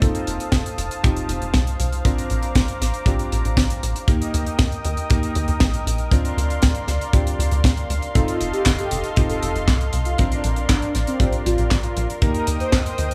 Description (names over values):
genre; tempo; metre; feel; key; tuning
italo disco; 118 BPM; 4/4; straight; Bb major; A4 = 440 Hz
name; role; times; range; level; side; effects
warm analog pad; sustained chords; 0.0-13.1 s; A4 to Eb6; -32 LUFS; equal; chorus
warm electric grand piano; stabs; 0.0-13.1 s; Bb3 to Bb4; -32 LUFS; equal; low-pass filter, digital delay
tight sequencer bass; bass; 0.0-13.1 s; F1 to Eb2; -26 LUFS; equal; digital delay
kick drum; drums; 0.0-12.8 s; none; -22 LUFS; equal; none
tight funk drum kit; drums; 0.0-13.1 s; handclaps, hi-hat, snare drum; -28 LUFS; equal; none
mellow synth brass; melody; 8.2-13.1 s; C4 to C5; -30 LUFS; equal; chorus, digital delay
room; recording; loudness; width
studio reverb; small room ambience; -21 LUFS; mono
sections
0.0-13.1 A section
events
none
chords
0.0 F7; 2.0 Bbadd9; 4.1 Eb; 6.1 Bbadd9/D; 8.2 F7; 10.2 Bbadd9; 12.2 Eb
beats
| 0.02 0.53 1.03 1.54 | 2.05 2.56 3.07 3.58 | 4.08 4.59 5.10 5.61 | 6.12 6.63 7.13 7.64 | 8.15 8.66 9.17 9.68 | 10.19 10.69 11.20 11.71 | 12.22 12.73